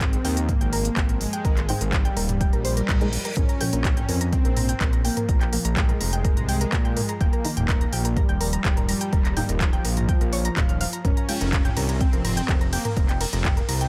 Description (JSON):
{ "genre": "melodic techno", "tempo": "125 BPM", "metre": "4/4", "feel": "straight", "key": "Bb dorian", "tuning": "A4 = 440 Hz", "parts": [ { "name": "soft supersaw", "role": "melody", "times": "0.0-13.0 s", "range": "F3 to Db4", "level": "-33 LUFS", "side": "equal", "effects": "subtle chorus, cassette tape, sidechain pumping, dub echo" }, { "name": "soft round pluck", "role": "arpeggios", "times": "0.0-13.9 s", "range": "Bb4 to Bb6", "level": "-35 LUFS", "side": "equal", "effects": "chorus, sidechain pumping, dub echo" }, { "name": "filtered dub chord stab", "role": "stabs", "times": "0.0-13.2 s", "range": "Ab2 to F4", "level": "-36 LUFS", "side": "equal", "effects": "none" }, { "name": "fat analog bass", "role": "bass", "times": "0.0-13.9 s", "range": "Eb1 to Bb2", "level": "-28 LUFS", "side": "equal", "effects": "sidechain pumping" }, { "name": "overtone-sweeping drone", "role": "drone", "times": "0.2-13.9 s", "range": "Bb2 to F3", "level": "-43 LUFS", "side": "equal", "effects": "none" }, { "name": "electronic kick drum", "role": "drums", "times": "0.0-13.5 s", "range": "none", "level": "-25 LUFS", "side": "equal", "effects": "overdrive" }, { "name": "techno drum kit", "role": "drums", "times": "0.0-13.9 s", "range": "handclaps, hi-hat, ride cymbal, toms", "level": "-31 LUFS", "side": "equal", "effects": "overdrive" }, { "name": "reverse cymbal", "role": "sound effects", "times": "2.8-3.4 s", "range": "none", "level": "-40 LUFS", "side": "equal", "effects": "none" } ], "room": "digital ambience", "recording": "none", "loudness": "-23 LUFS", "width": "mono", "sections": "0.0-13.9 A section", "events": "reverse cymbal 2.8-3.4", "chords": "0.0 Ab; 3.4 Bbm7; 7.2 Ebadd9; 11.0 Db/F" }